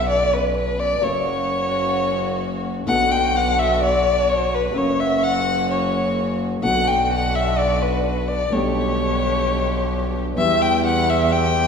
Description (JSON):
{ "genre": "tango", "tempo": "129 BPM", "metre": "4/4", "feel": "rubato", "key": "B harmonic minor", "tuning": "A4 = 439 Hz", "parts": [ { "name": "warm violin", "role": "second line", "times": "0.0-11.7 s", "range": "B4 to G5", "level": "-20 LUFS", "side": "left 2 dB", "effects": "none" }, { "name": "dark concert grand piano", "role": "accompaniment", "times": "0.0-11.7 s", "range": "B1 to G4", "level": "-25 LUFS", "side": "left 1 dB", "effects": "none" }, { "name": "warm studio string section", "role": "stabs", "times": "0.0-11.7 s", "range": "A#3 to G4", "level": "-29 LUFS", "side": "right 1 dB", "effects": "none" }, { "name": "clear double bass", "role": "bass", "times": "0.0-11.7 s", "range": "F#1 to E2", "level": "-25 LUFS", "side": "equal", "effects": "none" } ], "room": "wet scoring stage reverb, RT60 1.7 s", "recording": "recorded in a church or concert hall", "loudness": "-18 LUFS", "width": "side -6 dB against mid", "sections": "0.0-11.7 A section", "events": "violin solo 0.0-11.7", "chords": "0.0 Bmadd9; 1.0 F#; 2.9 Bm; 4.7 F#; 6.6 Bm; 8.5 G/B; 10.4 Em" }